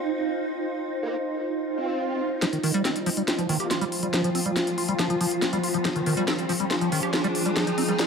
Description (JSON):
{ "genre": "psychedelic trance", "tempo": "140 BPM", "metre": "4/4", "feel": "straight", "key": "F minor", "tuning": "A4 = 442 Hz", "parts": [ { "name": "swarming drone", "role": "sustained chords", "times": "0.0-8.1 s", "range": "F3 to Ab4", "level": "-28 LUFS", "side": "equal", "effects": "built-in reverb" }, { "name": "warbly tape-like pad", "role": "texture", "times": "0.0-8.1 s", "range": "F4 to G5", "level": "-32 LUFS", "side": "right 1 dB", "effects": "chorus, built-in reverb" }, { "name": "formant-sweep wobble bass", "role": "second line", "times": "1.0-3.7, 6.7-8.0 s", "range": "Bb3 to C4", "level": "-38 LUFS", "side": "right 1 dB", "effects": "ensemble chorus, high-pass filter, digital delay" }, { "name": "swell and riser", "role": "sound effects", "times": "1.7-8.1 s", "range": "none", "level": "-35 LUFS", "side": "right 1 dB", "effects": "none" }, { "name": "liquid acid bass", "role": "riff", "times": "2.4-7.9 s", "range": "Eb3 to G4", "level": "-27 LUFS", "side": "moving between left 4 dB and right 5 dB", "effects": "phaser, auto-pan, digital delay" }, { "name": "drum and bass drum kit", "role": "drums", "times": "2.4-8.1 s", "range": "hi-hat, snare drum", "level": "-28 LUFS", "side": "left 1 dB", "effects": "low-pass filter on cymbals, low-pass filter on snare, low-pass filter on hats" }, { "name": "round analog bass", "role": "bass", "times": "2.5-7.9 s", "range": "none", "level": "barely audible", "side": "none", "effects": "none" } ], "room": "moderate lush hall reverb, RT60 1.9 s, digital ambience", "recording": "none", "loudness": "-23 LUFS", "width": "side -6 dB against mid", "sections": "0.0-2.4 A section; 2.4-8.1 B section", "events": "swell 1.7-2.4; build-up 2.4-8.1; drum fill 2.4-8.1; riser 2.4-8.1", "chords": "0.0 F5" }